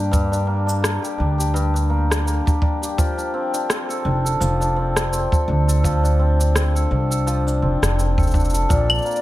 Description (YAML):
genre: folktronica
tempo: 84 BPM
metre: 4/4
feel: swing 56% on 16ths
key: unclear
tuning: A4 = 440 Hz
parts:
  - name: hammered dulcimer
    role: arpeggios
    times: 0.0-9.2 s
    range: G2 to A4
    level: -23 LUFS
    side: left 2 dB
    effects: tape echo
  - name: upright bass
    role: bass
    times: 0.0-9.0 s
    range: F1 to G2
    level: -19 LUFS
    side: right 1 dB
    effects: none
  - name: electronic cabasa, rim click and claves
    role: drums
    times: 0.1-9.2 s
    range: none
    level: -26 LUFS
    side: left 1 dB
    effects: none
  - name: kick drum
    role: drums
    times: 0.1-8.9 s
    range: none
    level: -20 LUFS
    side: equal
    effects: none
  - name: mellow baroque flute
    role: melody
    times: 8.7-9.2 s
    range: D5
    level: -23 LUFS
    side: left 1 dB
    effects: vintage 12-bit sampler grit
room: studio reverb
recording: none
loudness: -17 LUFS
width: side -15 dB against mid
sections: 0.0-9.2 A section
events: none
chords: 0.0 Gm; 3.0 F6; 8.7 Bb